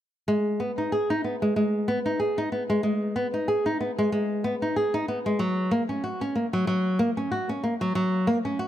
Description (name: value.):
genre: folktronica.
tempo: 94 BPM.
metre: 4/4.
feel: swing 56% on 16ths.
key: G# minor.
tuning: A4 = 440 Hz.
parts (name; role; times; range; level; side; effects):
flamenco guitar; solo; 0.3-8.7 s; F#3 to G#4; -24 LUFS; equal; tape echo.
room: moderate echo chamber reverb, RT60 2.0 s.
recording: none.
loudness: -24 LUFS.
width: side -11 dB against mid.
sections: 0.3-8.7 A section.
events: none.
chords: none.